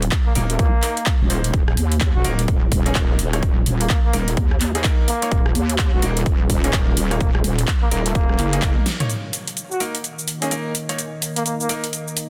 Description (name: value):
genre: bass house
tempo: 127 BPM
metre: 4/4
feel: swing 61% on 16ths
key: Eb minor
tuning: A4 = 440 Hz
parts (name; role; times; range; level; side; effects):
- wobble bass; bass; 0.0-8.7 s; Eb1 to Eb2; -23 LUFS; equal; chorus, tube saturation, sidechain pumping
- big-room dance drum kit; drums; 0.0-12.3 s; handclaps, hi-hat, rim click, shaker, snare drum, toms; -28 LUFS; equal; none
- electronic kick drum; drums; 0.1-8.7 s; none; -21 LUFS; equal; overdrive
- trumpet with bucket mute; melody; 0.3-11.7 s; Bb3 to Gb4; -31 LUFS; equal; dub echo
- bright grand piano; stabs; 0.4-11.8 s; Bb3 to Db5; -32 LUFS; equal; sidechain pumping, dub echo
- deep dark ambient pad; sustained chords; 10.0-12.3 s; Eb3 to Eb5; -33 LUFS; equal; chorus, built-in reverb, sidechain pumping
room: digital ambience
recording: dense, heavily limited modern master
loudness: -20 LUFS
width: mono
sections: 0.0-9.1 A section; 9.1-12.3 B section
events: filter sweep on wobble bass 0.0-9.1; drum fill 8.7-9.1; band accent 8.9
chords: 0.0 Eb5